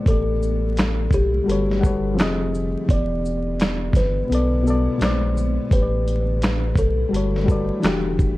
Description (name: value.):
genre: lo-fi hip hop.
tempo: 85 BPM.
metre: 4/4.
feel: swing 61% on 16ths.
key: unclear.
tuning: A4 = 445 Hz.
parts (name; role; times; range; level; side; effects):
reed electric piano; accompaniment; 0.0-8.4 s; A2 to F#5; -24 LUFS; left 2 dB; overdrive, low-pass filter.
granular cloud pad; sustained chords; 0.0-8.4 s; B#2 to F#5; -33 LUFS; equal; built-in reverb, low-pass filter.
kalimba; melody; 0.1-7.8 s; G4 to D5; -27 LUFS; equal; low-pass filter, analog delay.
soft dub sub bass; bass; 0.1-8.4 s; E1 to B1; -24 LUFS; equal; none.
dusty soul sampler-style drum kit; drums; 0.1-8.4 s; handclaps, hi-hat, kick drum, shaker, snare drum; -21 LUFS; equal; none.
room: light reverb.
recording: dark, warm production, vinyl crackle, lossy compression artefacts.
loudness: -18 LUFS.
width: side -17 dB against mid.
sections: 0.0-8.4 A section.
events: none.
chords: 0.1 A7sus4; 1.5 Gmaj9#11; 2.2 Fm7; 2.9 Em7; 4.3 Bm7; 5.0 A#9; 5.7 A7sus4; 7.1 Gmaj9#11; 7.8 Em9.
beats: | 0.06 0.77 1.47 2.18 | 2.89 3.59 4.30 5.00 | 5.71 6.42 7.12 7.83.